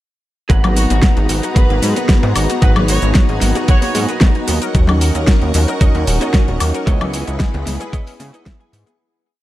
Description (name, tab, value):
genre	nu-disco, nu disco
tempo	113 BPM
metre	4/4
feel	straight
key	G# minor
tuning	A4 = 441 Hz
part	warm analog pad	accompaniment	0.5-9.0 s	B3 to A#5	-22 LUFS	equal	chorus, sidechain pumping, digital delay
part	string machine, full ensemble	sustained chords	0.5-9.0 s	B3 to C#6	-28 LUFS	equal	ensemble chorus, sidechain pumping
part	analog pluck	arpeggios	0.5-9.0 s	F#3 to A#4	-28 LUFS	left 4 dB	none
part	direct-recorded clean electric guitar	riff	0.5-9.0 s	E4 to G#5	-27 LUFS	right 4 dB	ensemble chorus
part	chorused synth bass	bass	0.5-8.8 s	D#1 to C#3	-17 LUFS	equal	none
part	electronic kick drum	drums	0.5-8.6 s	none	-12 LUFS	equal	overdrive
part	pop drum kit	drums	0.5-9.0 s	hi-hat, shaker, snare drum, woodblock	-20 LUFS	equal	overdrive
part	congas	percussion	0.5-9.0 s	none	-25 LUFS	left 1 dB	none
part	warm studio violin section	melody	0.8-3.9 s	F#4 to C#5	-25 LUFS	equal	digital delay
room	light reverb, digital ambience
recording	dark, warm production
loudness	-12 LUFS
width	side -15 dB against mid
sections	0.5-9.0 drop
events	drop 0.5-9.0; clean electric guitar fill 3.7-4.7, 8.2-9.0; fade-out 6.2-9.0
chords	0.5 G#m9; 4.5 D#m7; 6.9 C#m9